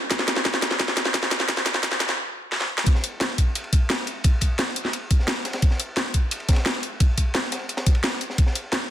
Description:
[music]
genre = drum and bass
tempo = 174 BPM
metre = 4/4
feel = straight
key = none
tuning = none
[part]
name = drum and bass drum kit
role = drums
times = 0.1-8.8 s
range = hi-hat, snare drum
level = -23 LUFS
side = equal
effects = none
[part]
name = electronic kick drum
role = drums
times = 0.1-8.5 s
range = none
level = -19 LUFS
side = equal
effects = none
[part]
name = crunchy breakbeat drum kit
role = drums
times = 2.9-8.9 s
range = ride cymbal, snare drum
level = -32 LUFS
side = equal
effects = high-pass filter on cymbals, high-pass filter on snare, high-pass filter on room
[sound]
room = light reverb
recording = dense, heavily limited modern master, high-pass filter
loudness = -20 LUFS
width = side -11 dB against mid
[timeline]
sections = 0.0-2.9 A section; 2.9-8.9 B section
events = build-up 0.0-2.9; drum fill 0.0-2.2, 2.5-2.9; stop 2.2-2.9; drop 2.9-8.9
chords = none

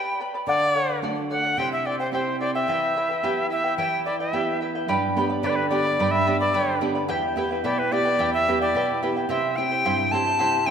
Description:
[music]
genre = andean folk, Andean ensemble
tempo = 109 BPM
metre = 2/4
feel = straight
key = E minor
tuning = A4 = 440 Hz
[part]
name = bright reedy quena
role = melody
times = 0.0-10.7 s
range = B4 to A5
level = -24 LUFS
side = left 1 dB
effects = none
[part]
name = charango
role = accompaniment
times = 0.0-10.7 s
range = E4 to B5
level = -26 LUFS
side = equal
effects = none
[part]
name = nylon-string guitar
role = accompaniment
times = 0.5-10.7 s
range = E2 to G4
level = -27 LUFS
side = right 2 dB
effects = none
[sound]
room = wet concert hall reverb, RT60 2.0 s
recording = minimal, uncompressed stereo recording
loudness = -21 LUFS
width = side -7 dB against mid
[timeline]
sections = 0.0-4.9 A section; 4.9-10.7 B section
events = none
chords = 0.5 D; 1.6 C; 2.7 Em; 4.9 G; 7.1 Em; 9.3 C

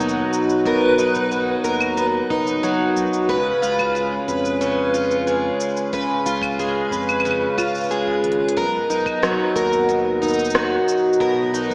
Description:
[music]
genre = folktronica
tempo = 91 BPM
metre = 4/4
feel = straight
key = B lydian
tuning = A4 = 440 Hz
[part]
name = picked plugged-in twelve-string acoustic guitar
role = arpeggios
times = 0.0-11.7 s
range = B2 to B4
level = -21 LUFS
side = equal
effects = lush chorus, diffuse ambient delay
[part]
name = warm sub bass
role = bass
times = 0.0-11.7 s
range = F#1 to E#2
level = -34 LUFS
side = equal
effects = none
[part]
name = organic electronic drum kit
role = drums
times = 0.0-11.7 s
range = claves, hi-hat, rim click, shaker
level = -28 LUFS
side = equal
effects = overdrive
[part]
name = backwards swelling texture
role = texture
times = 0.1-11.7 s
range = B4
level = -30 LUFS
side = equal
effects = built-in reverb
[part]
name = kick drum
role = drums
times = 0.7-11.7 s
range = none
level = -44 LUFS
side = equal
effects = none
[sound]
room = wet lush hall reverb, RT60 1.7 s, small room ambience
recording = dreamy mix soaked in reverb, vinyl crackle, small speaker sound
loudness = -20 LUFS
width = mono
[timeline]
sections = 0.0-11.7 A section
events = drum fill 8.2-8.6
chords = 0.0 Bmaj7; 3.3 C#7; 8.6 Bmaj7

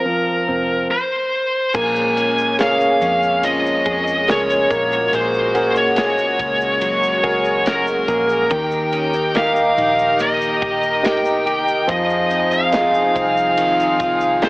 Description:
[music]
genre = pop ballad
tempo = 71 BPM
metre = 4/4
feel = straight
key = Bb minor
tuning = A4 = 440 Hz
[part]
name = high-gain lead guitar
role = melody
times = 0.0-14.5 s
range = Bb4 to Ab5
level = -18 LUFS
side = equal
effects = distortion
[part]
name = warm concert grand piano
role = accompaniment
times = 0.0-14.5 s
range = Eb3 to Db5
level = -21 LUFS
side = equal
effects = none
[part]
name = vintage muted fingered electric bass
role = bass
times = 0.0-14.5 s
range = F1 to F2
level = -34 LUFS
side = equal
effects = none
[part]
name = direct-recorded clean electric guitar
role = arpeggios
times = 1.7-14.5 s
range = F2 to Ab4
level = -25 LUFS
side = left 1 dB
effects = ensemble chorus
[part]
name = modern studio drum kit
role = drums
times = 1.7-14.5 s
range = crash cymbal, kick drum, ride cymbal, snare drum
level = -28 LUFS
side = equal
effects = none
[part]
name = egg shaker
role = percussion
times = 1.7-14.5 s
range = none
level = -47 LUFS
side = right 1 dB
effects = none
[part]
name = rich studio string section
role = sustained chords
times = 1.8-14.5 s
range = Eb3 to Bb4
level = -24 LUFS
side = equal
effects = none
[sound]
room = light reverb, studio reverb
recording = AM radio sound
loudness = -15 LUFS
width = side -23 dB against mid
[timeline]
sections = 0.0-1.7 A section; 1.7-14.5 B section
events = none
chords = 0.0 Fsus4; 1.7 Bbm7; 4.7 Gbadd9/Bb; 8.5 Eb; 11.9 Fm7

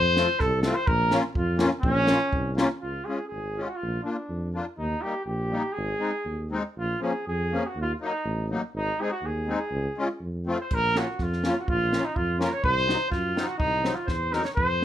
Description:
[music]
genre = alpine folk, alpine dance band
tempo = 123 BPM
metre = 2/4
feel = rubato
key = Db major, Bb minor from 10.7 s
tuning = A4 = 437 Hz
[part]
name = warm flugelhorn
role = melody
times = 0.0-14.8 s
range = Db4 to Db5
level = -27 LUFS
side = equal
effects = none
[part]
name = mellow tuba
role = bass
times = 0.0-14.8 s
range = Ab1 to Gb2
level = -30 LUFS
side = right 1 dB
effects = none
[part]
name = musette accordion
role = accompaniment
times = 0.2-14.8 s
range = F3 to F4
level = -28 LUFS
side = left 2 dB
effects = none
[part]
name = compact cocktail drum kit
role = drums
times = 0.2-2.7, 10.7-14.8 s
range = crash cymbal, hi-hat, kick drum, snare drum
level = -30 LUFS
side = equal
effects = none
[sound]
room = moderate studio reverb, RT60 0.6 s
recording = none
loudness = -24 LUFS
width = side -11 dB against mid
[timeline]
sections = 0.0-2.8 A section; 2.8-10.7 B section; 10.7-14.8 A section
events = drum fill 14.1-14.6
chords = 0.0 F; 0.9 Bbm; 2.8 Db; 3.8 Bb; 4.8 Eb; 5.8 Ab; 6.8 Bbm; 7.8 Ebm; 8.7 Ab; 9.7 Db; 10.2 F; 10.7 Bbm; 12.6 Cdim

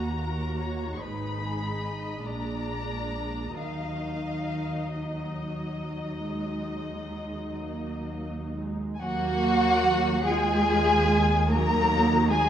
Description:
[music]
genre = classical, slow romantic movement for string orchestra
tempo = 41-52 BPM (dotted quarters)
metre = 12/8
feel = rubato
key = Eb minor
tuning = A4 = 440 Hz
[part]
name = muted chamber violin section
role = melody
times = 0.0-12.5 s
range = Gb4 to Db6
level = -33 LUFS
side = left 5 dB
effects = none
[part]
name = muted chamber violin section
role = second line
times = 0.0-12.5 s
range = Gb4 to Bb5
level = -30 LUFS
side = left 1 dB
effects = none
[part]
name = muted chamber viola section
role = accompaniment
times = 0.0-12.5 s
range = Gb3 to Gb4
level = -31 LUFS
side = right 2 dB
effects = none
[part]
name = muted chamber double bass section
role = bass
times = 0.0-12.5 s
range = Ab1 to Eb2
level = -32 LUFS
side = right 2 dB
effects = none
[part]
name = muted studio cello section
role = bass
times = 0.0-12.5 s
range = Eb2 to Bb3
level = -32 LUFS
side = right 2 dB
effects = none
[sound]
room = moderate scoring stage reverb, RT60 1.9 s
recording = none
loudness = -25 LUFS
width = side -10 dB against mid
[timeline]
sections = 0.0-9.0 A section; 9.0-12.5 A section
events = none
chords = 0.0 Ebm; 1.0 Abm; 2.2 Bb7; 3.6 Ebm

